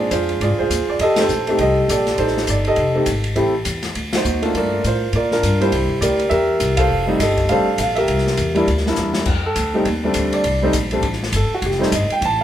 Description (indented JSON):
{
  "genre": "jazz piano trio",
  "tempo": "203 BPM",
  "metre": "4/4",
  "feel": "swing 60% on 8ths",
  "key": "unclear",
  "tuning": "A4 = 440 Hz",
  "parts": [
    { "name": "warm baby grand piano", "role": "melody", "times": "0.0-12.4 s", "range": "G3 to A5", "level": "-18 LUFS", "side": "right 1 dB", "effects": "none" },
    { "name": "upright bass", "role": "bass", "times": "0.0-12.4 s", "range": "F1 to Bb2", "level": "-22 LUFS", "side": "equal", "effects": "none" },
    { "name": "open jazz drum kit", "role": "drums", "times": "0.1-12.3 s", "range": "crash cymbal, hi-hat, kick drum, ride cymbal, snare drum", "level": "-25 LUFS", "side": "left 2 dB", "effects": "none" }
  ],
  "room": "moderate large studio reverb, RT60 1.4 s",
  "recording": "band playing live in one room",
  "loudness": "-16 LUFS",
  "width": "side -11 dB against mid",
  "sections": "0.0-9.3 A section; 9.3-12.4 B section",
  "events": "band accent 1.1, 4.1, 6.8; drum fill 9.0; grand piano solo 9.3-12.4",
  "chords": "0.0 Bb9 (rootless); 1.0 F9; 3.4 Am7; 3.9 D7b9; 4.5 Gm7; 5.7 C9; 6.9 F9; 8.1 C9; 9.3 F9"
}